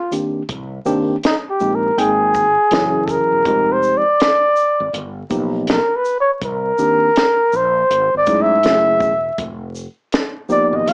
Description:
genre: hip hop, jazz-hop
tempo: 81 BPM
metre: 4/4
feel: swing 64% on 16ths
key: unclear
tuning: A4 = 440 Hz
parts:
  - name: breathy flugelhorn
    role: melody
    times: 0.0-10.9 s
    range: Eb4 to F5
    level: -14 LUFS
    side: equal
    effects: slapback echo
  - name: tine electric piano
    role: accompaniment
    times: 0.1-10.9 s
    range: D#3 to G5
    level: -19 LUFS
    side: equal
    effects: medium stereo tremolo
  - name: compact cocktail drum kit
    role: drums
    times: 0.1-10.9 s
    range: hi-hat, kick drum, shaker, snare drum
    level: -21 LUFS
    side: equal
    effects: none
  - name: fretless electric bass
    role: bass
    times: 0.5-10.9 s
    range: E1 to Ab2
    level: -27 LUFS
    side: equal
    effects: none
room: moderate studio reverb, RT60 0.5 s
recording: vinyl crackle, small speaker sound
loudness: -14 LUFS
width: side -38 dB against mid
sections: 0.0-10.9 A section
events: flugelhorn solo 0.0-10.9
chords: 0.5 Cm7; 2.0 Abmaj9; 2.7 Gb5; 3.5 Fm7; 4.9 G7alt; 6.4 Cm7; 7.9 Ab7b9b13; 8.6 Gbm7; 9.4 F7(no3)

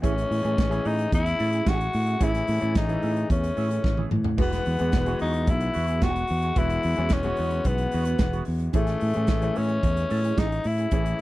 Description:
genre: disco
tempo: 110 BPM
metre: 4/4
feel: straight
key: unclear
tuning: A4 = 440 Hz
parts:
  - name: clear baby grand piano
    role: accompaniment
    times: 0.0-11.2 s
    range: E3 to G#4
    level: -33 LUFS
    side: left 3 dB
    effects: none
  - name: mellow electric guitar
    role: accompaniment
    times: 0.0-11.2 s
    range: B3 to B4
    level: -35 LUFS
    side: right 9 dB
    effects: wah
  - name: fingered electric bass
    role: bass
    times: 0.0-11.1 s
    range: E1 to A2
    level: -26 LUFS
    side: equal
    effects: none
  - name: modern studio drum kit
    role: drums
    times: 0.0-11.2 s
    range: hi-hat, kick drum, snare drum, splash cymbal, toms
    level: -26 LUFS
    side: equal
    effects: none
  - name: breathy tenor saxophone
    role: melody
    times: 0.1-11.2 s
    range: A3 to F#4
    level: -28 LUFS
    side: left 2 dB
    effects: none
room: little or no reverb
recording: none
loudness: -22 LUFS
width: side -17 dB against mid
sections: 0.0-11.2 A section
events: drum fill 3.8-4.4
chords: 0.0 Amaj7; 4.4 Eadd9; 8.7 Amaj7

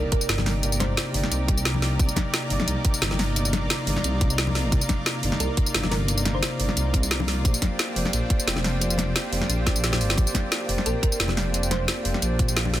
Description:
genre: liquid drum and bass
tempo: 176 BPM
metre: 4/4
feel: swing 53% on 16ths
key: C minor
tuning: A4 = 438 Hz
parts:
  - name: thumb-piano-like synth pluck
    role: melody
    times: 0.0-1.3, 5.4-6.8, 10.9-12.2 s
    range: Bb4 to C5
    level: -34 LUFS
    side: right 2 dB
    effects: wide subtle chorus, dub echo
  - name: mellow tine electric piano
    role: accompaniment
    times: 0.0-12.8 s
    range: C3 to D5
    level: -31 LUFS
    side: equal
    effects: tape echo
  - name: lush unison pad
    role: sustained chords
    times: 0.0-12.8 s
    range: C4 to D5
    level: -33 LUFS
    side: equal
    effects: chorus
  - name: dark detuned saw bass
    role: bass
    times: 0.0-12.8 s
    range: F1 to C2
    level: -26 LUFS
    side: equal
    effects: none
  - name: sub drop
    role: sound effects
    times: 0.0-0.6 s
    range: none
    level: -43 LUFS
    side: equal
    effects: none
  - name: drum and bass drum kit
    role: drums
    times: 0.1-12.8 s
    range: hi-hat, snare drum, tambourine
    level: -26 LUFS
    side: equal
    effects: soft clipping on snare
  - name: electronic kick drum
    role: drums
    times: 0.1-12.5 s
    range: none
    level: -23 LUFS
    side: equal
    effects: none
  - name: congas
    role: percussion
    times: 0.4-12.7 s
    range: none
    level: -34 LUFS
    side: left 4 dB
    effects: none
room: little or no reverb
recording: dense, heavily limited modern master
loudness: -21 LUFS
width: side -13 dB against mid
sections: 0.0-12.8 A section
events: impact 0.0-0.6; drum fill 9.7-10.2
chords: 0.0 Cm9; 7.4 Bb69

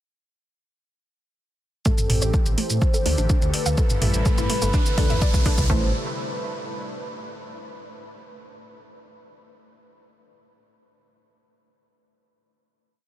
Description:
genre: melodic techno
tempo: 125 BPM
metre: 4/4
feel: straight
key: A minor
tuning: A4 = 441 Hz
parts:
  - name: expressive synth lead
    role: melody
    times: 1.9-5.9 s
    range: A4 to C5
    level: -31 LUFS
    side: equal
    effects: lush chorus, sidechain pumping, tape echo
  - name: lush unison pad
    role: sustained chords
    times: 1.9-5.9 s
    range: C3 to A4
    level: -33 LUFS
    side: left 1 dB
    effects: chorus, sidechain pumping
  - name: analog pluck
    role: arpeggios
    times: 1.9-5.9 s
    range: A3 to F5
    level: -33 LUFS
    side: right 2 dB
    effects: chorus, sidechain pumping, tape echo
  - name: filtered dub chord stab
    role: stabs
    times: 1.9-5.9 s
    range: A2 to D4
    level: -34 LUFS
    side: equal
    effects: phaser, wide subtle chorus, sidechain pumping, tape echo
  - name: deep house drum kit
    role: drums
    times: 1.9-5.7 s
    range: hi-hat, shaker, toms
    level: -27 LUFS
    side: right 1 dB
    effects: none
  - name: electronic kick drum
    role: drums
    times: 1.9-5.8 s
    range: none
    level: -21 LUFS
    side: equal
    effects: overdrive
  - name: riser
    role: sound effects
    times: 3.2-5.7 s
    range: none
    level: -35 LUFS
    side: right 1 dB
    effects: none
  - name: swelling detuned saw bass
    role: bass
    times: 2.1-5.9 s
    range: G1 to A2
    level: -24 LUFS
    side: equal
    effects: tube saturation, sidechain pumping
room: light reverb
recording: dense, heavily limited modern master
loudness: -19 LUFS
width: side -13 dB against mid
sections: 1.9-5.7 build; 5.7-7.6 final chord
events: build-up 1.9-5.7; filter sweep on synth arpeggio sound 1.9-5.7; riser 3.2-5.7; drum fill 3.8-5.7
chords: 1.9 Am7; 2.8 Dsus4; 3.8 Am7; 4.7 Dsus2; 5.7 Am7

